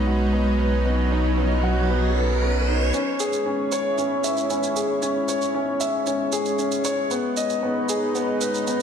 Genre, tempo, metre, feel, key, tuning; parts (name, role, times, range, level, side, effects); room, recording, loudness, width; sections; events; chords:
piano and strings electronica; 115 BPM; 4/4; straight; C# minor; A4 = 442 Hz
warm cello; melody; 0.0-2.7 s; F#3 to G#3; -27 LUFS; equal; ping-pong delay
lush unison pad; sustained chords; 0.0-8.8 s; F#3 to C#5; -27 LUFS; right 1 dB; chorus
warm upright piano; riff; 0.0-8.8 s; B3 to E5; -24 LUFS; left 2 dB; ping-pong delay
round analog bass; bass; 0.0-2.9 s; B1; -22 LUFS; right 1 dB
riser; sound effects; 0.7-2.9 s; -30 LUFS; equal
shaker; drums; 2.9-8.8 s; -31 LUFS; right 7 dB; small room ambience
moderate scoring stage reverb, RT60 1.5 s, studio reverb; -20 LUFS; side -7 dB against mid
0.0-2.9 A section; 2.9-8.8 B section
riser 0.7-2.9; build-up 2.9-8.8
0.0 Badd9; 2.9 C#m; 7.1 G#m